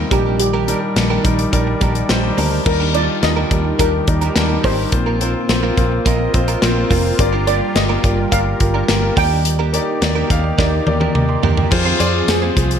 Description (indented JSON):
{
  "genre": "1980s-style pop",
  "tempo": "106 BPM",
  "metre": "4/4",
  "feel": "straight",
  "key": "unclear",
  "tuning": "A4 = 440 Hz",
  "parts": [
    { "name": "steel pan", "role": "melody", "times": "0.0-12.8 s", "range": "G4 to G5", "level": "-22 LUFS", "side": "right 1 dB", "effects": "none" },
    { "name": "warm concert grand piano", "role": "accompaniment", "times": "0.0-12.8 s", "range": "G2 to D6", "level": "-20 LUFS", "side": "left 2 dB", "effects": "none" },
    { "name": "sweeping resonant pad", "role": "sustained chords", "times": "0.0-12.8 s", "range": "Eb3 to D5", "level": "-24 LUFS", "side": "right 2 dB", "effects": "chorus" },
    { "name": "vintage muted fingered electric bass", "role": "bass", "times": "0.0-12.8 s", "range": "F1 to F2", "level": "-20 LUFS", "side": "equal", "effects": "none" },
    { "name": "direct-recorded clean electric guitar", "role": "riff", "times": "0.1-12.7 s", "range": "Bb3 to C5", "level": "-26 LUFS", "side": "right 7 dB", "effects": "analog chorus, ping-pong delay" },
    { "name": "modern studio drum kit", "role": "drums", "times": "0.1-12.8 s", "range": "crash cymbal, hi-hat, kick drum, snare drum, tambourine, toms", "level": "-19 LUFS", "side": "equal", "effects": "gated reverb" },
    { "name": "overdriven semi-hollow guitar", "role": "accompaniment", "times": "11.7-12.8 s", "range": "F2 to F3", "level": "-28 LUFS", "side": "equal", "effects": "none" }
  ],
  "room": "moderate plate reverb, RT60 1.9 s, studio ambience",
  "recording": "bright 1980s-style digital production",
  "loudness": "-14 LUFS",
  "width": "side -8 dB against mid",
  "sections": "0.0-2.7 A section; 2.7-11.7 B section; 11.7-12.8 C section",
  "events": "drum fill 10.6-11.7",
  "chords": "0.1 Ebmaj7/Bb; 2.7 Ebmaj7; 4.9 Bbsus2; 7.2 Gm7; 9.2 Ebmaj7; 11.7 Fm"
}